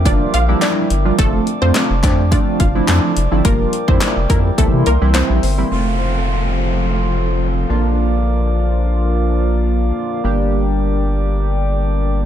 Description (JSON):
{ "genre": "dance-pop", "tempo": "106 BPM", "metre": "4/4", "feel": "straight", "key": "F major", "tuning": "A4 = 440 Hz", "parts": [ { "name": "glass harmonica", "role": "sustained chords", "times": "0.0-12.3 s", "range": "A4 to D6", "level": "-25 LUFS", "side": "left 1 dB", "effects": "sidechain pumping" }, { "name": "round analog bass", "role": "bass", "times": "0.0-12.3 s", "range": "F1 to C3", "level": "-17 LUFS", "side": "equal", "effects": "sidechain pumping" }, { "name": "wide unison pluck", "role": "melody", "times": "0.1-5.6 s", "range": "A3 to F5", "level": "-22 LUFS", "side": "right 1 dB", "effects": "sidechain pumping, digital delay" }, { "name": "chorused polysynth", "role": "accompaniment", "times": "0.1-12.3 s", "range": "E3 to G4", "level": "-20 LUFS", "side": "right 1 dB", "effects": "sidechain pumping" }, { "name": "punchy analog drum machine", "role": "drums", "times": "0.1-5.6 s", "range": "handclaps, hi-hat, kick drum, snare drum", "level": "-17 LUFS", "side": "equal", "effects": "none" }, { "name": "group handclap", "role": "percussion", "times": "0.6-5.3 s", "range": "none", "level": "-26 LUFS", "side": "left 4 dB", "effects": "none" }, { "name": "downlifter", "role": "sound effects", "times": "5.7-10.2 s", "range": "none", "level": "-28 LUFS", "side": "right 1 dB", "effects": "none" } ], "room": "digital ambience", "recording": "none", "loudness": "-14 LUFS", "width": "side -10 dB against mid", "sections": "0.0-5.7 A section; 5.7-12.3 B section", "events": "drop 0.0-5.7", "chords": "0.0 Gm7/F; 1.2 Dm7/F; 3.5 Gm7/F; 4.6 C7; 5.7 F; 7.7 Bb; 10.2 Gm", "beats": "0.05 0.62 | 1.19 1.75 2.32 2.88 | 3.45 4.02 4.58 5.15 | 5.71 6.28 6.85 7.41 | 7.98 8.54 9.11 9.68 | 10.24 10.81 11.38 11.94" }